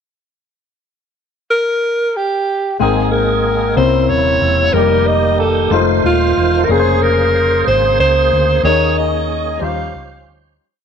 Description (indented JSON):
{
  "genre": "slow gospel",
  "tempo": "62 BPM (dotted quarters)",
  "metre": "6/8",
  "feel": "straight",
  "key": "Ab major",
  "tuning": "A4 = 442 Hz",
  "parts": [
    { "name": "breathy alto saxophone", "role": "melody", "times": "1.5-10.4 s", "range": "F4 to F5", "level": "-15 LUFS", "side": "equal", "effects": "none" },
    { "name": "warm grand piano", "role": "accompaniment", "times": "2.8-10.6 s", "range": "Ab2 to G5", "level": "-18 LUFS", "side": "left 10 dB", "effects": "none" },
    { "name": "tonewheel organ", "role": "sustained chords", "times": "2.8-10.6 s", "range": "C3 to C5", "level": "-20 LUFS", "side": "right 9 dB", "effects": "slow rotary speaker, chorus vibrato" },
    { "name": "hollow-body short-scale fingered electric bass", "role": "bass", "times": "2.8-10.6 s", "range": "Eb1 to Eb2", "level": "-18 LUFS", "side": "right 1 dB", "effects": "none" }
  ],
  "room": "moderate echo chamber reverb, RT60 1.5 s, studio reverb",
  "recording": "1960s-style stereo with parts hard left and right",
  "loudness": "-12 LUFS",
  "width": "side -7 dB against mid",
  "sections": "0.9-2.8 pickup bar; 2.8-10.6 A section",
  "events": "fade-out 8.6-10.6",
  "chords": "0.9 N.C.; 2.8 Abmaj9; 3.8 C7b9; 4.8 F9sus4; 5.7 F7; 6.7 Bbm9/F; 8.6 Eb7sus4; 9.6 Eb13",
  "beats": "| 0.85 1.83 | 2.80 3.78 | 4.75 5.72 | 6.70 7.67 | 8.65 9.62"
}